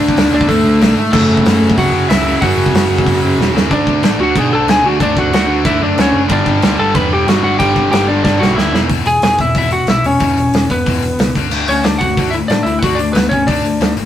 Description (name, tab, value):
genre	punk rock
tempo	185 BPM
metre	4/4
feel	straight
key	unclear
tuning	A4 = 441 Hz
part	lightly driven lead guitar	melody	0.0-13.9 s	A3 to B5	-15 LUFS	left 1 dB	none
part	distorted electric guitar	riff	0.0-14.1 s	E2 to D4	-20 LUFS	left 6 dB	overdrive
part	overdriven semi-hollow guitar	riff	0.0-8.9 s	E2 to D4	-19 LUFS	right 5 dB	none
part	tight distorted guitar	riff	0.0-3.7, 6.3-8.7 s	F#2 to D4	-22 LUFS	equal	distortion
part	overdriven picked electric bass	bass	0.0-14.1 s	E1 to B2	-21 LUFS	equal	none
part	loose indie drum kit	drums	0.1-14.0 s	crash cymbal, hi-hat, kick drum, snare drum	-16 LUFS	right 1 dB	none
room	moderate stone room reverb, RT60 1.2 s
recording	rough rehearsal-room recording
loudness	-11 LUFS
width	side -11 dB against mid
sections	0.0-3.7 A section; 3.7-8.9 B section; 8.9-14.1 C section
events	drum fill 3.4-3.7, 8.3-8.9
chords	0.0 D5; 1.1 F#m; 3.7 D; 6.3 G5; 8.7 E5; 8.9 E; 11.4 D